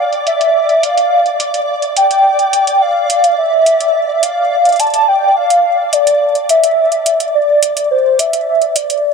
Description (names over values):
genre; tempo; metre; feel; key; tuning
IDM; 106 BPM; 4/4; straight; D minor; A4 = 439 Hz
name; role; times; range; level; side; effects
warbly nostalgic lead; melody; 0.0-9.1 s; C5 to A5; -11 LUFS; equal; analog chorus, cassette tape, tape echo
flickering grainy texture; texture; 0.0-9.1 s; D5; -20 LUFS; right 2 dB; built-in reverb
electronic hi-hat; drums; 0.1-9.0 s; none; -19 LUFS; right 2 dB; overdrive, low-pass filter on hats, low-pass filter on room
room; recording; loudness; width
moderate huge ambient reverb, RT60 6.6 s; none; -10 LUFS; side -5 dB against mid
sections
0.0-9.1 A section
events
none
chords
none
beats
0.27 0.83 1.40 | 1.97 2.53 3.10 3.66 | 4.23 4.80 5.36 5.93 | 6.49 7.06 7.63 8.19 | 8.76